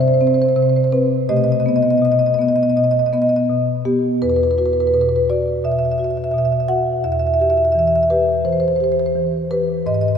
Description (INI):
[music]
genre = classical, contemporary piece for solo marimba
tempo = 85 BPM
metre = 4/4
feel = rubato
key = unclear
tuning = A4 = 440 Hz
[part]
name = marimba with medium mallets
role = solo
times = 0.0-10.2 s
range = E2 to F#5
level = -15 LUFS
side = equal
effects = none
[sound]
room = wet church reverb, RT60 3.3 s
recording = dark, warm production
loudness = -15 LUFS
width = side -7 dB against mid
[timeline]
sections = 0.0-4.2 A section; 4.2-10.2 B section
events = none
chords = 0.0 Cmaj7sus2; 1.3 Baug7; 4.2 Esus2; 7.0 Em